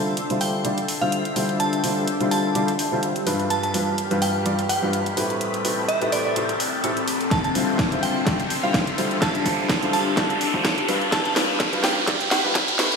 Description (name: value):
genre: piano house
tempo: 126 BPM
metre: 4/4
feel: swing 55% on 16ths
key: D dorian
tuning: A4 = 440 Hz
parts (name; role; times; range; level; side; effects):
- analog string pad; sustained chords; 0.0-13.0 s; D4 to C6; -30 LUFS; left 2 dB; ensemble chorus, sidechain pumping
- clear upright piano; riff; 0.0-13.0 s; G2 to D5; -25 LUFS; equal; sidechain pumping, low-pass filter, ping-pong delay
- riser; sound effects; 1.3-13.0 s; none; -28 LUFS; equal; none
- deep dark ambient pad; texture; 0.1-13.0 s; C4 to E6; -31 LUFS; left 3 dB; chorus, built-in reverb, sidechain pumping
- garage drum kit; drums; 0.2-13.0 s; hi-hat, snare drum; -27 LUFS; equal; studio reverb
- glassy synth bell; melody; 0.4-12.5 s; D5 to A5; -28 LUFS; right 2 dB; chorus, ping-pong delay
- electronic kick drum; drums; 7.3-12.7 s; none; -26 LUFS; equal; overdrive, studio reverb
room: wet digital room reverb, RT60 1.1 s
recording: played on a big sound system in a bare room, large studio reverb, high-pass filter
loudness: -20 LUFS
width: side -5 dB against mid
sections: 0.0-13.0 A section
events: build-up 0.0-13.0; filter sweep on upright piano 0.0-13.0; filter sweep 0.0-13.0; riser 1.3-13.0; drum fill 7.3-13.0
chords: 0.0 Dm11; 5.4 Am9; 7.3 Dm11